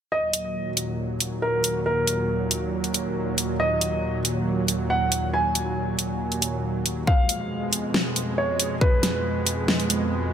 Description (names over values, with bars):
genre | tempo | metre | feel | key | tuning
heavy wobble dubstep | 138 BPM | 4/4 | half-time | Eb minor | A4 = 441 Hz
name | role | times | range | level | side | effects
dark concert grand piano | melody | 0.1-10.3 s | Bb4 to Ab5 | -27 LUFS | right 1 dB | tape echo
supersaw pad | sustained chords | 0.1-10.3 s | Eb2 to Ab3 | -26 LUFS | right 1 dB | sidechain pumping, low-pass filter
dubstep drum kit | drums | 0.3-10.0 s | hi-hat, snare drum | -24 LUFS | equal | none
electronic kick drum | drums | 7.1-8.9 s | none | -20 LUFS | left 1 dB | none
room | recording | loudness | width
moderate lush hall reverb, RT60 2.1 s | none | -22 LUFS | side -8 dB against mid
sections
0.1-10.3 A section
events
filter sweep on supersaw synth 0.1-10.3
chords
0.1 Ebm; 7.1 Fdim